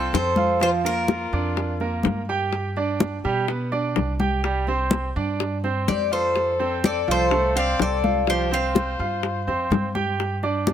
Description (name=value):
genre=latin, Cuban son and guajira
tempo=125 BPM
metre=4/4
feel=straight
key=F major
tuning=A4 = 439 Hz
part: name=Cuban tres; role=melody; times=0.0-2.3, 5.9-9.9 s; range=A4 to F5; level=-24 LUFS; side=left 2 dB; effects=none
part: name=bright trumpet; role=second line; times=0.0-2.2, 5.9-9.9 s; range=F4 to D5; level=-32 LUFS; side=left 6 dB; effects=none
part: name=bright baby grand piano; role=arpeggios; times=0.0-10.7 s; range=F3 to G5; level=-25 LUFS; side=right 4 dB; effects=none
part: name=upright bass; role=bass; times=0.0-10.7 s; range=C2 to B2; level=-28 LUFS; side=right 1 dB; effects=none
part: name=bongos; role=percussion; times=0.1-10.7 s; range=none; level=-27 LUFS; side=left 7 dB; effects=none
part: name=congas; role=percussion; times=0.1-10.7 s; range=none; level=-26 LUFS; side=left 2 dB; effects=none
room=light reverb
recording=none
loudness=-20 LUFS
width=side -10 dB against mid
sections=0.0-10.7 A section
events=none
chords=0.0 F; 0.6 Bb/F; 2.5 G; 4.4 Csus2; 6.4 F; 8.3 Csus4; 10.2 G5